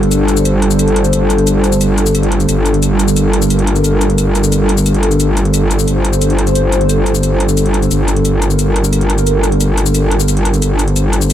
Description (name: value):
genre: dark technical drum and bass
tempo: 177 BPM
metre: 4/4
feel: straight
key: G minor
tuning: A4 = 441 Hz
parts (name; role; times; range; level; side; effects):
- dark analog pad; sustained chords; 0.0-11.3 s; G3 to C5; -15 LUFS; right 1 dB; chorus
- metallic wobble bass; bass; 0.0-11.3 s; G1; -13 LUFS; equal; chorus
- electronic hi-hat and shaker; drums; 0.0-11.3 s; none; -22 LUFS; left 4 dB; none
room: moderate lush hall reverb, RT60 1.9 s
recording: dreamy mix soaked in reverb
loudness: -10 LUFS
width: side -11 dB against mid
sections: 0.0-11.3 A section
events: none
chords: 0.0 Gm